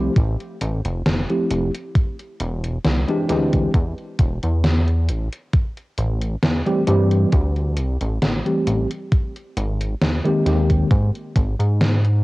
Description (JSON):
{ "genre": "vaporwave", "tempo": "67 BPM", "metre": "4/4", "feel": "swing 53% on 16ths", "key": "unclear", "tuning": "A4 = 439 Hz", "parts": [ { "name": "mellow tine electric piano", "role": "accompaniment", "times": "0.0-10.9 s", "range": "Eb3 to G4", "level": "-21 LUFS", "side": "equal", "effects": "medium stereo tremolo, lush chorus, vintage 12-bit sampler grit, cassette tape, tape echo" }, { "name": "chorused synth bass", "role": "bass", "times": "0.0-12.2 s", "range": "E1 to Ab2", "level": "-20 LUFS", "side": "equal", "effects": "none" }, { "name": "electronic kick drum", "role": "drums", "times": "0.2-11.5 s", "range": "none", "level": "-18 LUFS", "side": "equal", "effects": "overdrive, vintage 12-bit sampler grit" }, { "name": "gated 80s digital drum machine", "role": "drums", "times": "0.2-12.2 s", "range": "hi-hat, snare drum", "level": "-22 LUFS", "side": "equal", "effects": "gated reverb, gated reverb snare, overdrive, vintage 12-bit sampler grit" } ], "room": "little or no reverb", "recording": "home recording on cassette", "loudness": "-18 LUFS", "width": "side -20 dB against mid", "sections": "0.0-12.2 A section", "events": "none", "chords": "0.0 Fmaj9; 2.0 E7alt; 5.1 Am7; 9.1 Abmaj9" }